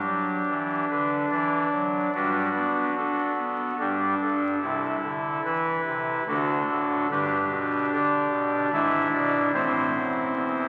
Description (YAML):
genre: classical, chorale-style piece for pipe organ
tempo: 73 BPM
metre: 3/4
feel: rubato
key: G major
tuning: A4 = 436 Hz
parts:
  - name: pipe organ, soft reed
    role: solo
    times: 0.0-10.7 s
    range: G1 to E5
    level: -25 LUFS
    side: equal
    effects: none
room: wet church reverb, RT60 3.8 s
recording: very old 78 rpm record, vinyl crackle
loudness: -25 LUFS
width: mono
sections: 0.0-10.7 A section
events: none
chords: 0.0 G5; 2.1 D/G; 3.8 G5; 4.6 Am/C; 6.3 D; 7.1 G; 8.7 E7/G#; 9.5 Am